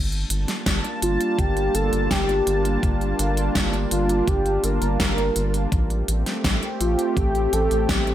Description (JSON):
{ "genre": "synthwave", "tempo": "83 BPM", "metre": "4/4", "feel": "straight", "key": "G minor", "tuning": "A4 = 440 Hz", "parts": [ { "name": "lush unison pad", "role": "sustained chords", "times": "0.2-8.1 s", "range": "G3 to A5", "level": "-26 LUFS", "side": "equal", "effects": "chorus, sidechain pumping" }, { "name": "round analog bass", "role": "bass", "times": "0.0-8.1 s", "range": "G1 to A1", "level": "-24 LUFS", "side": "equal", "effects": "none" }, { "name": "pop drum kit", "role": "drums", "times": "0.1-8.1 s", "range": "hi-hat, snare drum", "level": "-26 LUFS", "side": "equal", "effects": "small room ambience, gated reverb" }, { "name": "electronic kick drum", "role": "drums", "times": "0.7-8.0 s", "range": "none", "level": "-25 LUFS", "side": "equal", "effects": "small room ambience" }, { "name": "warm velvety synth lead", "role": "melody", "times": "1.0-8.1 s", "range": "F4 to Bb4", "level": "-24 LUFS", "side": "equal", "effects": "chorus, tape echo" } ], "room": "light reverb", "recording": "none", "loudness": "-19 LUFS", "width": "side -12 dB against mid", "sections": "0.0-8.1 A section", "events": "none", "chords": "0.0 Gm7; 5.7 Am7" }